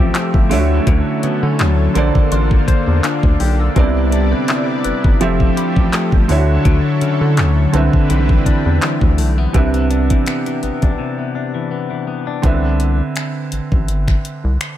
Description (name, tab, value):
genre	contemporary R&B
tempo	83 BPM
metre	4/4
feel	swing 54% on 16ths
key	C major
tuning	A4 = 440 Hz
part	felt-muted upright piano	accompaniment	0.0-14.8 s	C3 to E5	-20 LUFS	right 5 dB	none
part	lush unison pad	sustained chords	0.0-9.5 s	C3 to D5	-24 LUFS	equal	chorus
part	clean electric guitar	arpeggios	0.0-13.0 s	C3 to C5	-21 LUFS	left 7 dB	wide subtle chorus, digital delay
part	rubbery square bass	bass	0.0-14.6 s	F1 to D3	-16 LUFS	equal	none
part	smooth R&B drum kit	drums	0.1-14.8 s	finger snaps, handclaps, hi-hat, kick drum	-16 LUFS	equal	none
part	mallet-like synth pluck	texture	2.3-6.6 s	B5 to C6	-34 LUFS	right 2 dB	none
room	little or no reverb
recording	none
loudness	-13 LUFS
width	side -12 dB against mid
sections	0.0-9.5 A section; 9.5-12.4 B section; 12.4-14.8 C section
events	break 11.0-12.4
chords	0.0 Fmaj9; 0.5 Dmaj9; 2.0 Bbmaj9; 3.8 Cmaj9; 5.2 Fmaj9; 6.3 Dmaj9; 7.7 Cmaj9